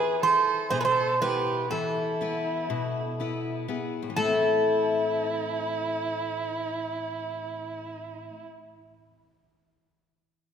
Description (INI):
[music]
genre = greek folk, Greek bouzouki band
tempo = 122 BPM (eighths)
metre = 9/8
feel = straight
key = A minor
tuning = A4 = 436 Hz
[part]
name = Greek bouzouki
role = melody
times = 0.0-8.4 s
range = A4 to C5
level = -26 LUFS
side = right 2 dB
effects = none
[part]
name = warm violin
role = second line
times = 0.0-8.4 s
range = E4 to A4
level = -32 LUFS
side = right 4 dB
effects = none
[part]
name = picked steel-string acoustic guitar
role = accompaniment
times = 0.0-8.6 s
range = A2 to B4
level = -31 LUFS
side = left 6 dB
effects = none
[sound]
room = wet concert hall reverb, RT60 2.0 s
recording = none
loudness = -25 LUFS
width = side -8 dB against mid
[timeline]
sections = 0.0-4.2 A section; 4.2-8.6 B section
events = none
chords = 0.0 E5; 4.2 Am